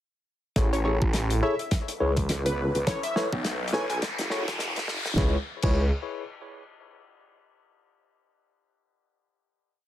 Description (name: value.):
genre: glitch hop.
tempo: 104 BPM.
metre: 4/4.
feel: swing 58% on 16ths.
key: C# minor.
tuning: A4 = 440 Hz.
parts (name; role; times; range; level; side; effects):
tine electric piano; stabs; 0.6-5.8 s; E4 to C#5; -31 LUFS; left 2 dB; sidechain pumping, ping-pong delay.
phased detuned saw bass; bass; 0.6-5.9 s; E1 to C#2; -26 LUFS; equal; phaser, overdrive.
electronic kick drum; drums; 0.6-5.7 s; none; -26 LUFS; equal; overdrive.
warm soul drum kit; drums; 0.6-5.7 s; crash cymbal, hi-hat, snare drum; -33 LUFS; left 1 dB; none.
riser; sound effects; 1.6-5.2 s; none; -35 LUFS; left 1 dB; none.
plucky unison lead; melody; 0.7-4.0 s; B4 to G#5; -32 LUFS; equal; cassette tape, ping-pong delay.
vowel-sweep wobble bass; bass; 2.3-5.2 s; F#1 to C#2; -30 LUFS; equal; chorus.
room: light reverb.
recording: heavily compressed radio sound, high-pass filter.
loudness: -24 LUFS.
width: side -12 dB against mid.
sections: 0.6-5.2 build; 5.2-7.5 final chord.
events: build-up 0.6-5.2; drum fill 0.6-5.2; filter sweep 0.6-5.2; riser 1.6-5.2.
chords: 0.6 Amaj7; 1.7 C#7(no3); 2.9 B9sus4; 4.0 F#7(no3); 5.2 C#m7.